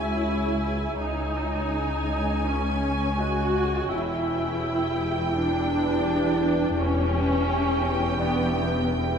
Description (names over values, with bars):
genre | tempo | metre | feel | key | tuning
cinematic, suspense film score | 84 BPM | 4/4 | straight | unclear | A4 = 443 Hz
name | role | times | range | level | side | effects
warm symphonic violin section | melody | 0.0-9.2 s | G5 to G#5 | -32 LUFS | equal | none
rich symphonic viola section | accompaniment | 0.0-8.9 s | B3 to F#4 | -26 LUFS | equal | none
deep dark ambient pad | sustained chords | 0.0-9.2 s | E4 to G#5 | -30 LUFS | equal | chorus, built-in reverb
rich symphonic cello section | bass | 0.0-9.2 s | C#2 to E2 | -30 LUFS | equal | none
rich symphonic double bass section | bass | 0.0-9.2 s | E1 to C#2 | -31 LUFS | equal | none
bright concert grand piano | texture | 0.0-9.2 s | D4 to E5 | -39 LUFS | equal | none
room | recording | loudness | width
wet cathedral reverb, RT60 6.0 s | in a vast, echoing space | -22 LUFS | side -7 dB against mid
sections
0.0-9.2 A section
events
none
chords
0.0 C#m; 3.9 Em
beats
0.28 | 1.01 1.74 2.47 3.20 | 3.92 4.64 5.34 6.05 | 6.77 7.48 8.19 8.90